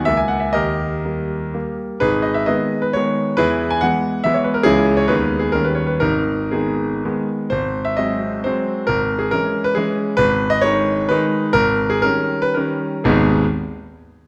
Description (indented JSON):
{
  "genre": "classical, romantic triple-time dance for piano with dotted rhythms",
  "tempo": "110-151 BPM",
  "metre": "3/4",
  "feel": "rubato",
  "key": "G# minor",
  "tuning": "A4 = 442 Hz",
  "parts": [
    { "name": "clear concert grand piano", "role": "solo", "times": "0.0-13.4 s", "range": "G#1 to G#5", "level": "-19 LUFS", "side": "equal", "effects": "none" }
  ],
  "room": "wet scoring stage reverb, RT60 1.4 s",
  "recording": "none",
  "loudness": "-19 LUFS",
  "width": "mono",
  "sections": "0.0-7.5 A section; 7.5-13.1 B section; 13.1-14.3 C section",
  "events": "slowing down 9.5-13.1",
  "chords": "0.1 C#m6; 0.6 D#; 2.0 G#m; 3.4 E; 4.7 C#m; 5.1 G#m/D#; 5.5 D#7; 6.0 G#m; 7.5 G#7; 8.9 C#m/G#; 10.2 G#m; 11.6 D#7/G#; 13.1 G#m",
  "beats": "0.08 | 0.55 1.05 1.55 | 2.02 2.49 2.96 | 3.39 3.83 4.27 | 4.67 5.10 5.55 | 6.03 6.53 7.04 | 7.52 7.99 8.45 | 8.88 9.32 9.75 | 10.19 10.63 11.10 | 11.55 12.04 12.56 | 13.07"
}